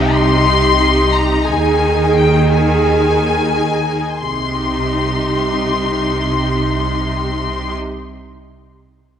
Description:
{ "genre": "cinematic, suspense film score", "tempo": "free time", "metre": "none", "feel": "none", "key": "C minor", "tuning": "A4 = 440 Hz", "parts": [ { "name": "rich studio violin section", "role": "melody", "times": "0.0-7.7 s", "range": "G5 to C6", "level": "-19 LUFS", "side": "left 6 dB", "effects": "none" }, { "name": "rich studio viola section", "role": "accompaniment", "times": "0.0-7.7 s", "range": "Eb4 to Ab4", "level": "-17 LUFS", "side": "right 1 dB", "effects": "none" }, { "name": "clear symphonic cello section", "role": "bass", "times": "0.0-7.7 s", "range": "C3 to Eb3", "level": "-21 LUFS", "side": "right 3 dB", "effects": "none" }, { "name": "rich studio double bass section", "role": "bass", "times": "0.0-7.7 s", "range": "C2 to Eb2", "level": "-20 LUFS", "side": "right 1 dB", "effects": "none" } ], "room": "moderate scoring stage reverb, RT60 2.1 s", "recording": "none", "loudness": "-13 LUFS", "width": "side -8 dB against mid", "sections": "0.0-4.2 A section; 4.2-7.0 B section", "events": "none", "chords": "0.0 Cm; 1.5 Ebsus4; 4.2 Cm", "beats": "free time" }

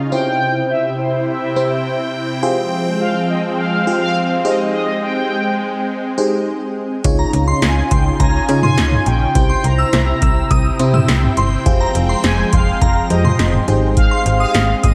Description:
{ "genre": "synth-pop", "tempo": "104 BPM", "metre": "4/4", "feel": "straight", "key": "F minor", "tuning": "A4 = 440 Hz", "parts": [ { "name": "sweeping resonant pad", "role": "sustained chords", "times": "0.0-14.9 s", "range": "C3 to G5", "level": "-23 LUFS", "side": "equal", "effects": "chorus, shimmer reverb" }, { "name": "mellow synth brass", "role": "melody", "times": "0.1-14.9 s", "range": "C5 to Bb5", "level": "-24 LUFS", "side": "equal", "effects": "chorus, delay, shimmer reverb" }, { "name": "FM electric piano", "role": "accompaniment", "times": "0.1-14.6 s", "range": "C4 to Db5", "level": "-24 LUFS", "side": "equal", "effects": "chorus, phaser, shimmer reverb" }, { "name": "slap-like FM bass", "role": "bass", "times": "7.0-14.9 s", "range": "F1 to Db3", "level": "-19 LUFS", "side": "equal", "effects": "none" }, { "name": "electro analog drum machine", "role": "drums", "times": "7.0-14.9 s", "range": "hi-hat, kick drum, snare drum, toms", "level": "-19 LUFS", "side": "equal", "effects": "none" }, { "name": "shimmering bell with halo", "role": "second line", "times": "7.2-14.9 s", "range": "Bb5 to E6", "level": "-26 LUFS", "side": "equal", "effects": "ensemble chorus, delay, shimmer reverb" } ], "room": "wet lush hall reverb, RT60 1.8 s, digital ambience", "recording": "dreamy mix soaked in reverb", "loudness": "-16 LUFS", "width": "mono", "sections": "0.0-14.9 A section", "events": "none", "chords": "0.1 C; 2.4 Fmadd9; 4.4 Abmaj7; 7.0 Dbadd9; 9.4 C; 11.7 Fmadd9; 13.7 Abmaj7", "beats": "| 0.12 0.70 1.28 1.85 | 2.43 3.01 3.58 4.16 | 4.74 5.31 5.89 6.47 | 7.04 7.62 8.20 8.78 | 9.35 9.93 10.51 11.08 | 11.66 12.24 12.81 13.39 | 13.97 14.54" }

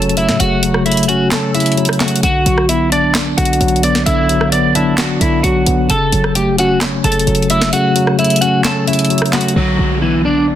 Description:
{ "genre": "hip hop, trap", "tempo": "131 BPM", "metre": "4/4", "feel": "half-time", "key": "B minor", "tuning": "A4 = 439 Hz", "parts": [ { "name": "electric guitar at the edge of break-up", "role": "melody", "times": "0.0-10.5 s", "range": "E3 to D6", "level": "-16 LUFS", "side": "right 1 dB", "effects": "phaser, low-pass filter" }, { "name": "tine electric piano", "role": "accompaniment", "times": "0.0-10.6 s", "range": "C#3 to D5", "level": "-15 LUFS", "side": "left 2 dB", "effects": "medium stereo tremolo, low-pass filter" }, { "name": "short 808-style bass", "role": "bass", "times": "0.0-10.6 s", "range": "F#1 to A2", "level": "-19 LUFS", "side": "right 1 dB", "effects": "none" }, { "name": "trap drum kit", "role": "drums", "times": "0.0-9.6 s", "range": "handclaps, hi-hat, rim click, snare drum", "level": "-18 LUFS", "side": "equal", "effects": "soft clipping on snare" }, { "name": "downlifter", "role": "sound effects", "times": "9.6-10.6 s", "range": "none", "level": "-23 LUFS", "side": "equal", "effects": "none" } ], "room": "light reverb, digital ambience", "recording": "dense, heavily limited modern master", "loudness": "-11 LUFS", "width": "side -11 dB against mid", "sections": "0.0-9.6 A section", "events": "kick muted 1.3-2.2, 7.7-9.6", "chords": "0.0 F#m; 2.2 Bm; 5.9 F#m; 9.6 Bm", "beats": "| 0.40 0.86 1.32 1.77 | 2.23 2.69 3.15 3.61 | 4.06 4.52 4.98 5.44 | 5.90 6.35 6.81 7.27 | 7.73 8.19 8.64 9.10 | 9.56 10.02 10.48" }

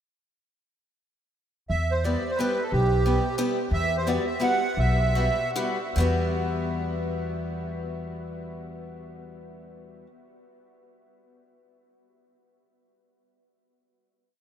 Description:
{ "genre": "musette waltz", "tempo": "136-179 BPM", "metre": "3/4", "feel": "straight", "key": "E minor", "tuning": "A4 = 440 Hz", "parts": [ { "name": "accordion", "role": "melody", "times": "1.7-5.5 s", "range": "G4 to F#5", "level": "-28 LUFS", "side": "right 2 dB", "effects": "light tremolo tuning" }, { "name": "upright bass", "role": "bass", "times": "1.7-10.0 s", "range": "B1 to E2", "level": "-27 LUFS", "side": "equal", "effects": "none" }, { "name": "picked acoustic archtop guitar", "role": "accompaniment", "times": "2.0-10.1 s", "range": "G3 to G4", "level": "-30 LUFS", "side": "left 2 dB", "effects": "none" } ], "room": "wet huge ambient reverb, RT60 8.1 s", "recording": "in a vast, echoing space", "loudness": "-23 LUFS", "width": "side -9 dB against mid", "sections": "1.7-6.0 A section; 6.0-8.6 final chord", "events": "slowing down 3.7-6.0", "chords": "1.7 Em; 3.7 Emadd9", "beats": "| 1.70 2.04 2.39 | 2.73 3.06 3.40 | 3.73 4.07 4.42 | 4.77 5.14 5.54 | 5.96 6.40 6.84 | 7.27 7.71 8.15" }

